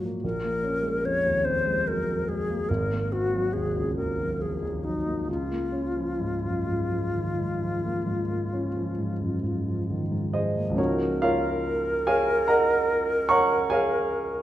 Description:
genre	classical, impressionist duo for alto flute and grand piano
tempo	42-50 BPM (dotted quarters)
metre	12/8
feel	rubato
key	Db major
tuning	A4 = 436 Hz
part	dark grand piano	accompaniment	0.0-14.4 s	Ab1 to Db6	-26 LUFS	right 1 dB	none
part	bright alto flute	melody	0.2-14.4 s	Eb4 to Db5	-27 LUFS	left 1 dB	none
room	wet recital hall reverb, RT60 1.4 s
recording	none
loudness	-24 LUFS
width	side -13 dB against mid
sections	0.0-10.8 A section; 10.8-14.4 A section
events	none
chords	0.2 Bbm7; 2.7 Ab13; 5.3 Db6; 10.8 Db69

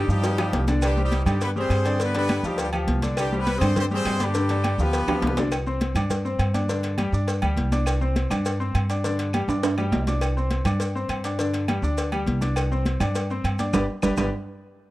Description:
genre	latin, salsa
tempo	204 BPM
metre	4/4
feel	straight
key	unclear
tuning	A4 = 440 Hz
part	brilliant horn section	melody	0.0-5.4 s	G3 to C5	-27 LUFS	equal	none
part	clear concert grand piano	accompaniment	0.0-14.3 s	D3 to D6	-28 LUFS	left 2 dB	none
part	upright bass	bass	0.0-14.3 s	G1 to G2	-25 LUFS	equal	none
part	congas	percussion	0.1-14.2 s	none	-29 LUFS	equal	none
part	maracas	percussion	0.1-14.2 s	none	-42 LUFS	right 4 dB	none
part	agogo bells and timbales	percussion	0.2-14.2 s	none	-32 LUFS	right 4 dB	none
part	cowbell and bongos	percussion	0.2-14.2 s	none	-32 LUFS	left 3 dB	none
part	claves	percussion	0.4-14.2 s	none	-39 LUFS	left 3 dB	none
room	small room ambience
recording	dry, close 1970s-style studio recording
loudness	-21 LUFS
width	side -17 dB against mid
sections	0.0-5.5 A section; 5.5-14.9 B section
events	drum fill 0.2-0.8, 5.1-5.5, 9.5-10.2; band accent 13.7-14.9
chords	0.0 G5; 0.8 Csus2; 2.0 G7; 3.2 Csus2; 4.3 G7; 5.5 Csus2; 13.7 G

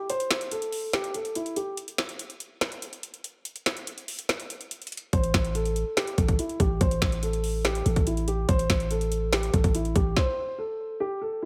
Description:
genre	hip hop, trap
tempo	143 BPM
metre	4/4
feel	half-time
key	A minor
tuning	A4 = 440 Hz
part	dark concert grand piano	melody	0.0-1.7, 5.1-11.5 s	E4 to C5	-32 LUFS	equal	low-pass filter
part	trap drum kit	drums	0.1-10.3 s	finger snaps, hi-hat, kick drum, snare drum	-29 LUFS	equal	none
part	growling 808-style bass	bass	5.1-10.2 s	A1	-29 LUFS	equal	none
room	little or no reverb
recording	none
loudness	-27 LUFS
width	mono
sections	0.0-11.5 A section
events	break 0.0-5.1; stop 10.2-11.5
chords	0.0 N.C.; 5.1 Am

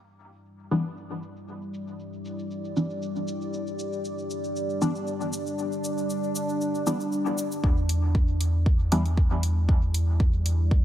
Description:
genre	dub techno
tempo	117 BPM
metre	4/4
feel	swing 54% on 16ths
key	E minor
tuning	A4 = 440 Hz
part	deep dark ambient pad	sustained chords	1.1-10.8 s	G3 to D5	-31 LUFS	equal	chorus, built-in reverb, vintage 12-bit sampler grit, sidechain pumping
part	electronic shaker and hi-hat	drums	0.1-10.6 s	none	-37 LUFS	left 1 dB	low-pass filter on hats, low-pass filter on perc
part	filtered dub chord stab	stabs	0.7-9.0 s	E3 to D4	-28 LUFS	equal	chorus, phaser, sidechain pumping, dub echo
part	round analog bass	bass	7.6-10.8 s	E2	-24 LUFS	equal	sidechain pumping
part	electronic kick drum	drums	7.6-10.8 s	none	-22 LUFS	equal	none
room	light reverb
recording	none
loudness	-24 LUFS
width	side -12 dB against mid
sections	0.0-7.6 A section; 7.6-10.8 B section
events	none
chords	0.0 Em7

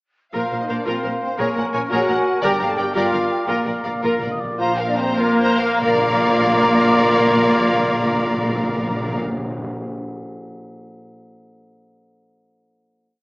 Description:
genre	cinematic, heroic adventure film score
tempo	92-116 BPM (dotted quarters)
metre	6/8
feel	straight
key	Bb major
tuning	A4 = 441 Hz
part	clear clarinet	second line	0.3-9.2 s	F4 to Bb4	-28 LUFS	equal	none
part	large flute ensemble	second line	0.3-9.2 s	Bb4 to Bb5	-26 LUFS	equal	none
part	rich chamber violin section	second line	0.3-9.2 s	Bb4 to Bb5	-28 LUFS	equal	none
part	warm oboe	second line	0.3-9.2 s	F4 to F5	-26 LUFS	equal	none
part	rich symphonic viola section	accompaniment	0.3-9.2 s	F4 to D5	-25 LUFS	equal	none
part	warm French horn section	sustained chords	0.3-9.2 s	Bb3 to Bb4	-22 LUFS	equal	none
part	rich studio double bass section	bass	0.3-9.2 s	G1 to Bb1	-29 LUFS	equal	none
part	rich symphonic cello section	bass	0.3-9.2 s	G2 to Bb2	-26 LUFS	equal	none
part	warm symphonic violin section	melody	0.4-9.2 s	Bb4 to Bb5	-26 LUFS	left 1 dB	none
part	timpani	percussion	3.5-9.7 s	Bb2	-29 LUFS	equal	none
room	wet concert hall reverb, RT60 1.9 s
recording	small speaker sound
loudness	-16 LUFS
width	side -26 dB against mid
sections	0.3-4.6 theme; 4.6-5.8 outro; 5.8-8.4 final chord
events	slowing down 3.0-5.8; timpani fill 3.5-4.6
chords	0.3 Bbsus2; 1.4 Gbadd9/Bb; 2.4 Gm7; 3.5 Bb; 4.6 Bbsus2; 5.8 Bb

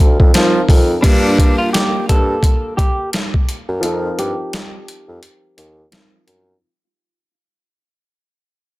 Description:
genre	hip hop, boom-bap hip-hop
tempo	86 BPM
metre	4/4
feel	swing 59% on 16ths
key	unclear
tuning	A4 = 439 Hz
part	dark grand piano	accompaniment	0.0-6.6 s	F3 to Bb4	-22 LUFS	left 1 dB	cassette tape, high-pass filter, low-pass filter
part	warm bassoon	bass	0.0-6.5 s	D2 to F3	-18 LUFS	equal	none
part	boom bap sampler-style drum kit	drums	0.0-6.5 s	crash cymbal, hi-hat, kick drum, snare drum	-13 LUFS	equal	none
part	electric guitar at the edge of break-up	melody	1.0-6.2 s	D4 to A4	-21 LUFS	right 1 dB	harmonic tremolo, high-pass filter, low-pass filter
room	digital ambience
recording	dense, heavily limited modern master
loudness	-12 LUFS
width	side -20 dB against mid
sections	0.0-1.0 A section; 1.0-6.6 B section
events	fade-out 1.0-6.6; break 3.8-6.6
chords	0.0 F7sus4; 1.0 Gm7; 3.8 F7sus4

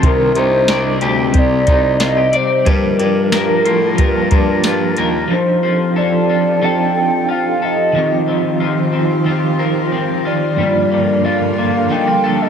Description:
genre	dream pop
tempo	91 BPM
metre	4/4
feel	straight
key	G minor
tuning	A4 = 440 Hz
part	electric guitar at the edge of break-up	accompaniment	0.0-12.5 s	G2 to A4	-21 LUFS	right 4 dB	tremolo, wide subtle chorus
part	soft string machine	sustained chords	0.0-12.5 s	C3 to A5	-20 LUFS	equal	ensemble chorus
part	electric guitar at the edge of break-up	arpeggios	0.0-12.5 s	C3 to D5	-19 LUFS	left 5 dB	lush chorus, dub echo
part	breathy baritone saxophone	bass	0.0-5.3 s	C2 to A2	-20 LUFS	equal	none
part	soft vintage rhythm box	drums	0.0-5.1 s	hi-hat, kick drum, snare drum, tambourine	-16 LUFS	equal	none
part	warbly nostalgic lead	melody	0.1-12.5 s	Bb4 to G5	-18 LUFS	equal	chorus, dub echo
room	moderate spring reverb, RT60 2.2 s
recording	echo-heavy mix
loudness	-12 LUFS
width	side -7 dB against mid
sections	0.0-5.3 A section; 5.3-12.5 B section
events	none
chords	0.0 Cmadd9; 2.7 Gm7; 5.3 F13; 7.9 Eb69; 10.6 Gm9

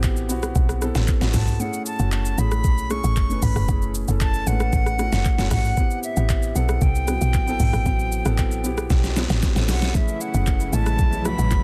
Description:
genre	amapiano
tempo	115 BPM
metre	4/4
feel	straight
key	unclear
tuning	A4 = 440 Hz
part	warm grand piano	accompaniment	0.0-11.6 s	F#3 to B4	-31 LUFS	equal	none
part	woody log drum bass	bass	0.0-11.6 s	F#1 to C2	-25 LUFS	equal	none
part	smooth R&B drum kit	drums	0.0-11.6 s	handclaps, hi-hat, kick drum, rim click, shaker, snare drum, toms	-24 LUFS	equal	none
part	silver concert flute	melody	1.3-11.6 s	E5 to C#6	-31 LUFS	equal	tape echo
part	warm studio string section	sustained chords	9.9-11.6 s	C#3 to E4	-33 LUFS	equal	sidechain pumping
part	congas and bongos	percussion	9.9-11.6 s	none	-35 LUFS	equal	none
room	small room ambience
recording	dense, heavily limited modern master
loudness	-21 LUFS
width	mono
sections	0.0-11.6 A section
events	break 1.6-2.6; drum fill 8.9-9.9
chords	0.0 Am7; 1.6 F#m7; 5.8 Am7; 9.9 F#m7

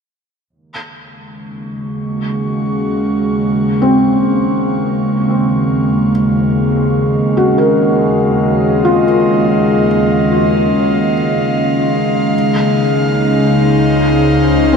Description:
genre	ambient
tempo	61 BPM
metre	3/4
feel	straight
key	unclear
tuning	A4 = 443 Hz
part	airy breathy pad	sustained chords	0.5-14.8 s	Db3 to Db6	-17 LUFS	equal	chorus
part	muted studio double bass section	bass	0.5-14.8 s	Db2 to Eb2	-27 LUFS	equal	none
part	analog drone	drone	1.4-14.8 s	Db3 to Ab3	-14 LUFS	equal	chorus
part	felt-muted upright piano	arpeggios	3.8-14.8 s	C4 to Bb4	-17 LUFS	left 1 dB	diffuse ambient delay
room	wet cathedral reverb, RT60 6.4 s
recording	in a vast, echoing space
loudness	-11 LUFS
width	side -6 dB against mid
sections	0.5-14.8 A section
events	fade-in on analog synth pad 0.5-14.8; fade-in on double bass section 0.5-14.8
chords	0.5 Ebm7; 12.3 Dbmaj7

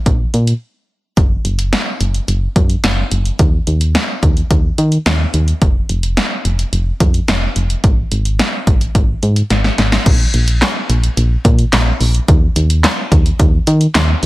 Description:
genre	synth-pop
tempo	108 BPM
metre	4/4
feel	straight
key	unclear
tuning	A4 = 440 Hz
part	solid FM bass	bass	0.1-14.3 s	F1 to Eb3	-14 LUFS	equal	none
part	punchy analog drum machine	drums	0.1-14.3 s	crash cymbal, handclaps, hi-hat, kick drum, snare drum	-14 LUFS	equal	none
room	little or no reverb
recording	dense, heavily limited modern master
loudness	-12 LUFS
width	side -19 dB against mid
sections	0.0-10.1 A section; 10.1-14.3 B section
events	break 0.6-1.2; drum fill 9.5-10.1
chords	none

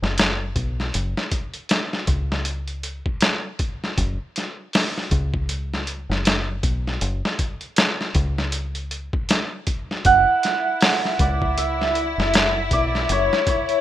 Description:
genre	trip hop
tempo	79 BPM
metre	4/4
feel	swing 58% on 16ths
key	unclear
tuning	A4 = 439 Hz
part	deep dub fingered electric bass	bass	0.0-13.3 s	F#1 to C#2	-25 LUFS	equal	none
part	trip hop sampler-style drum kit	drums	0.0-13.8 s	hi-hat, kick drum, snare drum	-22 LUFS	equal	none
part	dark studio violin section	sustained chords	10.0-13.8 s	E4	-25 LUFS	left 2 dB	none
part	hammered dulcimer	melody	10.1-13.8 s	C#5 to F#5	-20 LUFS	right 3 dB	tape echo
room	digital ambience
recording	rough home demo mix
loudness	-19 LUFS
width	side -12 dB against mid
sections	0.0-13.8 A section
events	none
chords	0.0 F#5

